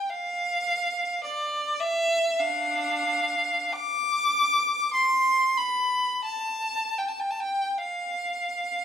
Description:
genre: classical, free, expressive piece for unaccompanied violin.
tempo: 36-54 BPM.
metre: 4/4.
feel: rubato.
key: D dorian.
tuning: A4 = 444 Hz.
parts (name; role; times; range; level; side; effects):
rich violin; solo; 0.0-8.8 s; D4 to D6; -24 LUFS; equal; none.
room: moderate recital hall reverb, RT60 1.4 s.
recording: minimal, uncompressed stereo recording.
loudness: -23 LUFS.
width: side -9 dB against mid.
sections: 0.0-8.8 A section.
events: none.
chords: none.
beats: 0.11 1.24 | 2.38 3.73 4.94 6.25 | 7.79.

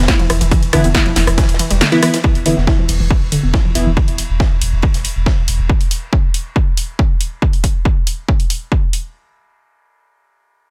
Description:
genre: driving peak-time techno.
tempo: 139 BPM.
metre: 4/4.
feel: straight.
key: unclear.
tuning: A4 = 440 Hz.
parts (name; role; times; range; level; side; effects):
warbly dusty pluck; riff; 0.0-3.9 s; D3 to E4; -22 LUFS; equal; chorus, sidechain pumping, digital delay.
saturated sub bass; bass; 0.0-5.7 s; E1; -20 LUFS; equal; tube saturation, sidechain pumping, low-pass filter.
modern studio drum kit; drums; 0.0-5.6 s; hi-hat, ride cymbal, snare drum; -32 LUFS; equal; sidechain pumping on hats, high-pass filter on hats, small room ambience, sidechain pumping on cymbals, high-pass filter on cymbals, high-pass filter on snare, high-pass filter on room.
electronic kick drum; drums; 0.1-8.8 s; none; -17 LUFS; equal; overdrive, small room ambience.
techno drum kit; drums; 0.1-9.0 s; hi-hat, ride cymbal, rim click, snare drum; -21 LUFS; equal; overdrive, small room ambience.
wavetable chord stab; stabs; 0.7-3.9 s; E3 to E4; -20 LUFS; equal; sidechain pumping, dub echo.
room: light reverb, small room ambience.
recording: none.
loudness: -15 LUFS.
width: mono.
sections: 0.0-2.2 A section; 2.2-9.1 B section.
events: drop 0.0-2.2; filter sweep on synth arpeggio sound 2.2-4.0.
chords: 0.0 E5.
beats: 0.08 | 0.52 0.95 1.38 1.81 | 2.24 2.67 3.10 3.54 | 3.97 4.40 4.83 5.26 | 5.70 6.13 6.56 6.99 | 7.42 7.85 8.28 8.72.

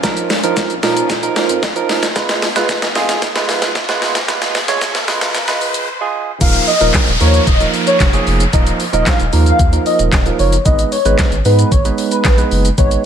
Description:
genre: dance-pop.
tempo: 113 BPM.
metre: 4/4.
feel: straight.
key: unclear.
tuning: A4 = 440 Hz.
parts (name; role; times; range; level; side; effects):
barky tine electric piano; accompaniment; 0.0-13.1 s; F3 to Db5; -18 LUFS; right 6 dB; overdrive, phaser, sidechain pumping.
string machine, violas; sustained chords; 0.0-6.4 s; Ab2 to F4; -28 LUFS; left 1 dB; ensemble chorus, sidechain pumping.
saturated sub bass; bass; 0.0-13.0 s; Eb1 to Bb2; -16 LUFS; equal; sidechain pumping.
pop drum kit; drums; 0.0-13.0 s; crash cymbal, handclaps, hi-hat, kick drum, shaker, snare drum; -16 LUFS; equal; none.
riser and downlifter; sound effects; 1.7-10.7 s; none; -23 LUFS; left 1 dB; none.
airy dreamy lead; melody; 6.4-12.9 s; Cb5 to F5; -17 LUFS; left 1 dB; chorus, sidechain pumping, ping-pong delay.
room: light reverb.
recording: high-pass filter.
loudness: -12 LUFS.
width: side -8 dB against mid.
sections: 0.0-6.4 A section; 6.4-13.1 B section.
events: build-up 0.0-6.4; drum fill 0.0-5.9; riser 1.7-6.4; break 5.9-6.4; drop 6.4-13.1.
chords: 0.0 Bbsus4; 2.2 Fdim; 6.4 Ebsus2; 10.7 Abm.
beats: | 0.04 0.57 1.10 1.63 | 2.16 2.69 3.22 3.75 | 4.29 4.82 5.35 5.88 | 6.41 6.94 7.47 8.00 | 8.53 9.06 9.60 10.13 | 10.66 11.19 11.72 12.25 | 12.78.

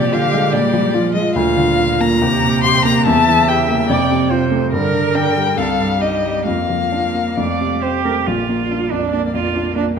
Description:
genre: quick classical-period movement for piano quartet.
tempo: 131-148 BPM.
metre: 4/4.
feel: rubato.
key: Bb major.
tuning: A4 = 441 Hz.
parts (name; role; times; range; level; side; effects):
rich violin; melody; 0.0-9.9 s; Bb4 to C6; -19 LUFS; left 7 dB; none.
rich cello; second line; 0.0-9.8 s; Bb2 to G4; -21 LUFS; right 8 dB; none.
rich viola; accompaniment; 0.0-10.0 s; Bb3 to E5; -22 LUFS; right 5 dB; none.
warm baby grand piano; accompaniment; 0.0-10.0 s; Bb1 to G4; -18 LUFS; left 1 dB; none.
room: wet recital hall reverb, RT60 1.4 s.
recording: none.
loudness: -14 LUFS.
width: side -6 dB against mid.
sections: 0.0-8.3 A section; 8.3-10.0 B section.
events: none.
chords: 0.0 Bb7; 1.4 Bb/D; 2.2 Cm7/Eb; 3.1 Edim7; 3.9 F; 4.7 Gm; 5.6 Cm; 6.5 Bb/F; 7.4 F; 8.3 Bb.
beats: 0.13 0.54 0.95 | 1.36 1.79 2.22 2.64 | 3.06 3.47 3.89 4.31 | 4.72 5.15 5.57 6.01 | 6.46 6.91 7.37 7.82 | 8.27 8.71 9.13 9.55 | 9.97.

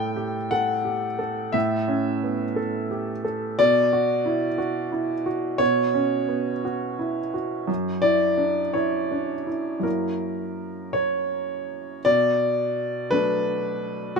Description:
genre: neoclassical minimalist piano.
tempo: 54-60 BPM (dotted quarters).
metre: 6/8.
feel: rubato.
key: B minor.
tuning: A4 = 440 Hz.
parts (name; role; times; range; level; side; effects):
clear upright piano; solo; 0.0-14.2 s; F#2 to G5; -22 LUFS; equal; none.
room: light reverb.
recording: minimal, uncompressed stereo recording.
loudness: -22 LUFS.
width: side -5 dB against mid.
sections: 0.0-12.1 A section; 12.1-14.2 B section.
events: none.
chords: 0.0 A7; 3.6 Bmadd9; 7.7 F#7; 12.1 Bm7.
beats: 0.51 | 1.54 2.57 | 3.59 4.59 | 5.60 6.64 | 7.68 8.75 | 9.85 10.95 | 12.05 13.11 | 14.16.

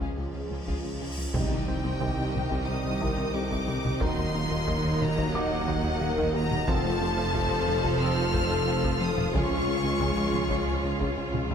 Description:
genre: cinematic, hybrid orchestral and electronic film score.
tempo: 90 BPM.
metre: 4/4.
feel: straight.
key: unclear.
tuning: A4 = 440 Hz.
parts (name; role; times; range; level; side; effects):
warm symphonic violin section; melody; 0.0-11.3 s; Db5 to F6; -35 LUFS; left 2 dB; none.
warm studio violin section; second line; 0.0-11.5 s; F4 to Eb5; -36 LUFS; left 4 dB; none.
rich symphonic viola section; accompaniment; 0.0-11.5 s; Eb3 to F4; -36 LUFS; right 2 dB; none.
hollow soft pad; sustained chords; 0.0-11.5 s; Eb3 to Eb5; -36 LUFS; right 1 dB; chorus.
tight sequenced synth; arpeggios; 0.0-11.5 s; C3 to F4; -38 LUFS; right 1 dB; none.
plucky analog bass; riff; 0.0-11.5 s; C2 to F3; -34 LUFS; left 2 dB; none.
rich symphonic cello section; bass; 0.0-11.5 s; C2 to F2; -37 LUFS; right 2 dB; none.
warm symphonic double bass section; bass; 0.0-11.5 s; F1 to Eb2; -36 LUFS; right 4 dB; none.
wide detuned saw bass; bass; 0.0-11.5 s; Eb1 to Db2; -37 LUFS; equal; chorus.
taiko ensemble; drums; 0.0-11.5 s; none; -34 LUFS; equal; none.
cymbal swell and impact; sound effects; 0.5-4.0 s; none; -37 LUFS; equal; none.
felt-muted upright piano; texture; 0.0-11.5 s; Ab4 to D6; -42 LUFS; left 1 dB; none.
dark French horn section; sustained chords; 1.3-11.5 s; Eb4 to Bb4; -34 LUFS; left 5 dB; none.
warm trombone section; sustained chords; 1.3-10.9 s; Eb3 to Eb4; -38 LUFS; right 5 dB; none.
mellow tuba; bass; 1.3-11.5 s; F1 to Eb2; -34 LUFS; right 4 dB; none.
room: moderate scoring stage reverb, RT60 1.8 s.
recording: none.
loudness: -25 LUFS.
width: side -7 dB against mid.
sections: 0.0-1.3 A section; 1.3-11.5 B section.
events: cymbal swell 0.5-1.3; impact 1.3-4.0; drum fill 11.3.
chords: 0.0 Db; 1.3 Cm; 4.0 Ebm; 6.7 F; 9.3 Db.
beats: 0.01 0.68 | 1.34 2.01 2.68 3.34 | 4.01 4.68 5.34 6.01 | 6.68 7.34 8.01 8.68 | 9.34 10.01 10.68 11.34.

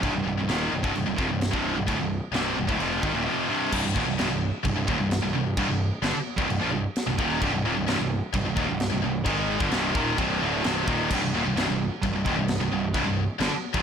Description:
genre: heavy metal.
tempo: 130 BPM.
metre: 4/4.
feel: straight.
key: C minor.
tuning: A4 = 435 Hz.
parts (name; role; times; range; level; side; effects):
heavy high-gain guitar; riff; 0.0-13.8 s; C2 to Ab3; -30 LUFS; left 16 dB; distortion.
overdriven electric guitar; riff; 0.0-13.8 s; C2 to Ab3; -33 LUFS; left 3 dB; none.
scooped high-gain guitar; riff; 0.0-13.8 s; C2 to Ab3; -27 LUFS; right 6 dB; distortion.
fuzz picked electric bass; bass; 0.0-13.8 s; C1 to Bb1; -32 LUFS; left 1 dB; overdrive.
tight metal drum kit; drums; 0.0-13.8 s; china cymbal, crash cymbal, kick drum, snare drum; -31 LUFS; left 1 dB; none.
room: light reverb.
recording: blown-out, overdriven recording, overdrive.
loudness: -23 LUFS.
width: side -7 dB against mid.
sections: 0.0-3.7 A section; 3.7-13.8 B section.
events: none.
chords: 0.0 Cm.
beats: | 0.03 0.50 0.96 1.42 | 1.88 2.34 2.81 3.27 | 3.73 4.19 4.65 5.11 | 5.57 6.03 6.50 6.96 | 7.42 7.88 8.34 8.80 | 9.26 9.72 10.18 10.63 | 11.10 11.55 12.02 12.47 | 12.93 13.39.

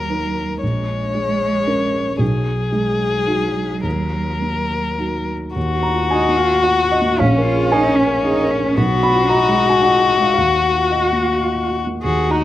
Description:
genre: neoclassical piano and strings.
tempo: 104-116 BPM.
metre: 3/4.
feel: rubato.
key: Eb minor.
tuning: A4 = 442 Hz.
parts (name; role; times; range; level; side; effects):
warm violin; melody; 0.0-12.4 s; Db4 to Db5; -18 LUFS; left 5 dB; slapback echo.
warm cello; second line; 0.0-12.4 s; Gb3 to Ab4; -24 LUFS; right 4 dB; slapback echo.
felt-muted upright piano; accompaniment; 0.0-12.4 s; Bb1 to Cb6; -19 LUFS; right 2 dB; slapback echo.
room: little or no reverb.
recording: recorded outdoors, with no room sound.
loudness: -15 LUFS.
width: side -13 dB against mid.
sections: 0.0-5.6 A section; 5.6-12.4 B section.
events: none.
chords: 0.0 Ebm; 0.6 Bbm7; 2.2 Abm7/Cb; 3.8 Ebm; 7.2 Bbm7; 8.8 Abm7/Cb; 10.4 Ebm.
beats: 0.09 | 0.62 1.15 1.68 | 2.20 2.73 3.28 | 3.84 4.42 4.99 | 5.55 6.11 6.65 | 7.19 7.72 8.24 | 8.77 9.29 9.82 | 10.36 10.93 11.49 | 12.04.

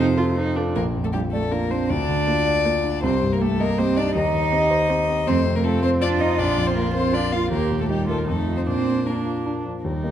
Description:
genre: quick classical-period movement for piano quartet.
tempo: 158 BPM.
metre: 3/4.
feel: rubato.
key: Bb major.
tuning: A4 = 439 Hz.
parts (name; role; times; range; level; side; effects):
warm violin; melody; 0.0-10.1 s; G4 to F5; -26 LUFS; left 5 dB; none.
warm cello; second line; 0.0-10.1 s; C3 to F4; -24 LUFS; right 5 dB; none.
warm concert grand piano; accompaniment; 0.0-10.1 s; Bb1 to Eb5; -23 LUFS; left 1 dB; none.
warm viola; accompaniment; 0.0-10.1 s; A3 to G4; -28 LUFS; right 2 dB; none.
room: moderate scoring stage reverb, RT60 1.7 s.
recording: dark, warm production.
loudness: -19 LUFS.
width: side -10 dB against mid.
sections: 0.8-9.8 A section.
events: none.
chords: 0.0 F; 0.8 Bb; 1.9 Bb/D; 3.0 Cm7; 4.2 Cm/Eb; 5.3 F; 6.4 Bb5; 7.5 Eb; 8.3 F7; 8.7 Bb.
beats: 0.37 | 0.76 1.14 1.52 | 1.90 2.28 2.66 | 3.03 3.41 3.79 | 4.16 4.53 4.90 | 5.27 5.64 6.01 | 6.38 6.75 7.13 | 7.50 7.89 8.27 | 8.67 9.06 9.46 | 9.85.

